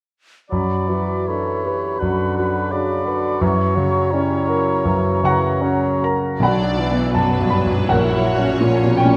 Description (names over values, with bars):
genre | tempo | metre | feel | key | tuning
classical, romantic movement for piano and orchestra | 75-86 BPM | 4/4 | rubato | B minor | A4 = 443 Hz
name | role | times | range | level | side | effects
clear concert grand piano | melody | 0.5-9.2 s | A#1 to C#6 | -21 LUFS | equal | none
mellow hollow silver concert flute | second line | 0.5-6.1 s | A#5 to C#6 | -30 LUFS | equal | none
warm clarinet | second line | 0.5-6.1 s | E4 to A4 | -28 LUFS | equal | none
warm cor anglais | second line | 0.5-6.1 s | B4 to D5 | -29 LUFS | equal | none
clear bassoon | accompaniment | 0.5-6.1 s | C#3 to G3 | -28 LUFS | equal | none
warm symphonic violin section | melody | 6.4-9.2 s | B4 to D5 | -30 LUFS | equal | none
warm symphonic violin section | second line | 6.4-9.2 s | C#4 to F#4 | -31 LUFS | equal | none
warm symphonic viola section | accompaniment | 6.4-9.2 s | E3 to C#4 | -26 LUFS | equal | none
rich symphonic cello section | bass | 6.4-9.2 s | A#2 to B2 | -29 LUFS | equal | none
warm symphonic double bass section | bass | 6.4-9.2 s | A#1 to B1 | -30 LUFS | equal | none
timpani | percussion | 6.4-7.5 s | B2 | -31 LUFS | equal | none
room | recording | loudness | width
moderate scoring stage reverb, RT60 1.6 s | none | -19 LUFS | mono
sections
0.5-6.4 A section; 6.4-9.2 B section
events
none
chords
0.5 Bm/F#; 3.4 F#7; 6.4 Bm; 7.9 F#7/A#